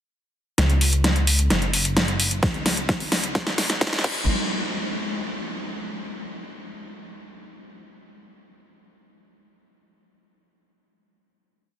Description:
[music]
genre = EDM, festival progressive house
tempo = 130 BPM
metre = 4/4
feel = straight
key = unclear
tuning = A4 = 440 Hz
[part]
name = wide detuned saw bass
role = bass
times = 0.6-4.3 s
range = F#1 to C#2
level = -23 LUFS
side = equal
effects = chorus, sidechain pumping
[part]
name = big-room dance drum kit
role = drums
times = 0.6-4.1 s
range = crash cymbal, hi-hat, snare drum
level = -23 LUFS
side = equal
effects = none
[part]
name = electronic kick drum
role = drums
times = 2.4-4.1 s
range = none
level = -25 LUFS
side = equal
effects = none
[sound]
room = moderate huge ambient reverb, RT60 7.5 s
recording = dense, heavily limited modern master, high-pass filter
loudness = -20 LUFS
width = side -10 dB against mid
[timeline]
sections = 0.6-4.3 build; 4.3-6.1 final hit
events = build-up 0.6-4.3; drum fill 0.6-4.3; filter sweep 0.6-4.3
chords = none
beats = | 0.58 1.04 1.50 1.97 | 2.43 2.89 3.35 3.81

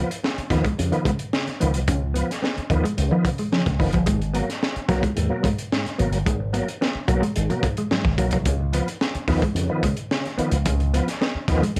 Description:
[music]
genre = funk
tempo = 109 BPM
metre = 4/4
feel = straight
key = unclear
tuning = A4 = 440 Hz
[part]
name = mellow electric guitar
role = riff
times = 0.0-11.7 s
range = E#3 to C#4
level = -30 LUFS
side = equal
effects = none
[part]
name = overdriven tonewheel organ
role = stabs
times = 0.0-11.8 s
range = G#2 to B3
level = -28 LUFS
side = equal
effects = chorus vibrato, fast rotary speaker
[part]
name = crunchy breakbeat drum kit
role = drums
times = 0.1-11.8 s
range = hi-hat, kick drum, snare drum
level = -28 LUFS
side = equal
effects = none
[part]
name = slap bass with an envelope filter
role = bass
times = 0.4-11.8 s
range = F#1 to C#3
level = -26 LUFS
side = equal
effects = none
[sound]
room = light reverb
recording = none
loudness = -23 LUFS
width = mono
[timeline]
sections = 0.0-11.8 A section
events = none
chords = 0.0 C#9; 4.1 G#m9; 8.5 C#9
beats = 0.23 0.78 1.33 | 1.88 2.42 2.97 3.52 | 4.07 4.62 5.17 5.71 | 6.26 6.81 7.36 7.91 | 8.46 9.01 9.56 10.11 | 10.66 11.21 11.76

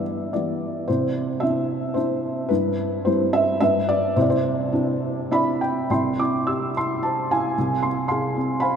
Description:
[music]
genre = classical, lyrical solo piano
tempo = 101-114 BPM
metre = 3/4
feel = rubato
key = C major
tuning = A4 = 440 Hz
[part]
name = felt-muted upright piano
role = solo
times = 0.0-8.8 s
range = C2 to E6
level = -20 LUFS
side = equal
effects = none
[sound]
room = wet cathedral reverb, RT60 6.2 s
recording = in a vast, echoing space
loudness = -20 LUFS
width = side -7 dB against mid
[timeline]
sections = 0.0-5.9 A section; 5.9-8.8 B section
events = felt piano fill 5.0-5.9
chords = 0.0 G6; 0.9 Cadd9; 2.5 C/G; 3.6 G; 4.2 Cadd9; 5.9 C; 7.6 Fm/C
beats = 0.33 | 0.88 1.42 1.95 | 2.50 3.05 3.60 | 4.16 4.72 5.31 | 5.89 6.47 7.03 | 7.56 8.09 8.62

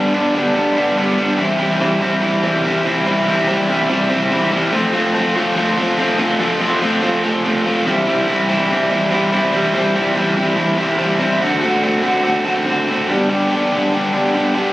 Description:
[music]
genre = rock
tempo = 144 BPM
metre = 4/4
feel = straight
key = unclear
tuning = A4 = 440 Hz
[part]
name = biting overdriven guitar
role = solo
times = 0.0-14.7 s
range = G2 to G4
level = -14 LUFS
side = equal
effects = none
[sound]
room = light reverb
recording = recorded on a phone in the room, club reverb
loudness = -14 LUFS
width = side -16 dB against mid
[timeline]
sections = 0.0-1.4 A section; 1.4-14.7 A section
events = none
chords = 0.0 G; 1.4 C; 4.7 F; 7.9 C; 11.4 D5; 13.1 G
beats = 0.14 0.56 0.97 | 1.39 1.81 2.23 2.65 | 3.06 3.48 3.90 4.31 | 4.73 5.15 5.57 5.98 | 6.40 6.82 7.23 7.65 | 8.07 8.49 8.90 9.32 | 9.74 10.16 10.58 10.99 | 11.41 11.83 12.25 12.67 | 13.09 13.51 13.93 14.35

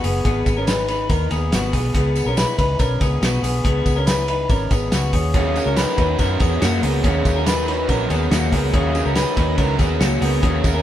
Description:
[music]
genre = jangly indie pop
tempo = 142 BPM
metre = 4/4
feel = straight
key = unclear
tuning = A4 = 440 Hz
[part]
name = electric guitar through a small old amp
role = arpeggios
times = 0.0-10.8 s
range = A#3 to B4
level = -21 LUFS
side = left 2 dB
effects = spring reverb
[part]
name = vintage muted fingered electric bass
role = bass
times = 0.0-10.8 s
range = F#1 to F#2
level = -22 LUFS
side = equal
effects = none
[part]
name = cloth-damped thuddy drum kit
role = drums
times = 0.0-10.7 s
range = hi-hat, kick drum, ride cymbal, snare drum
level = -22 LUFS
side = equal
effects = none
[part]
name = tambourine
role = percussion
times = 0.0-10.7 s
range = none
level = -35 LUFS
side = right 7 dB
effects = none
[part]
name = raw garage guitar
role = accompaniment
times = 5.3-10.8 s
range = D#3 to A#4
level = -24 LUFS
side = right 3 dB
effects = overdrive
[sound]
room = moderate stone room reverb, RT60 1.1 s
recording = band playing live in one room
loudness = -16 LUFS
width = side -11 dB against mid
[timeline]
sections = 0.0-10.8 A section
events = none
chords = 0.0 G#m7; 1.9 C#m7; 5.1 D#m7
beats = | 0.25 0.68 1.10 1.53 | 1.95 2.38 2.80 3.22 | 3.65 4.07 4.50 4.92 | 5.34 5.77 6.19 6.62 | 7.04 7.46 7.89 8.31 | 8.73 9.16 9.58 10.01 | 10.43

